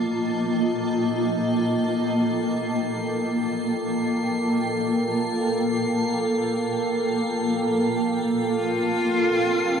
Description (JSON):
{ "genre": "ambient", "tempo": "free time", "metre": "none", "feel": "none", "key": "unclear", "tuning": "A4 = 442 Hz", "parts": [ { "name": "granular cloud pad", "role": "sustained chords", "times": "0.0-9.8 s", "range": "Bb3 to A5", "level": "-24 LUFS", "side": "equal", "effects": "built-in reverb" }, { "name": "analog drone", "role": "drone", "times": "0.8-9.8 s", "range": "Bb3 to A4", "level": "-26 LUFS", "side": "equal", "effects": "chorus" }, { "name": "drifting glass-harmonics texture", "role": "texture", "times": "0.0-9.8 s", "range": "C7", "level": "-36 LUFS", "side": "right 1 dB", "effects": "chorus, built-in reverb" }, { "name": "rich cello", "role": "melody", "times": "8.6-9.8 s", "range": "F4", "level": "-22 LUFS", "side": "equal", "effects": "tape echo" } ], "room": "wet cathedral reverb, RT60 5.2 s", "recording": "in a vast, echoing space", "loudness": "-21 LUFS", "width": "side -7 dB against mid", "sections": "0.0-9.8 A section", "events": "fade-in on synth texture 0.0-9.8", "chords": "0.0 Eb69/Bb" }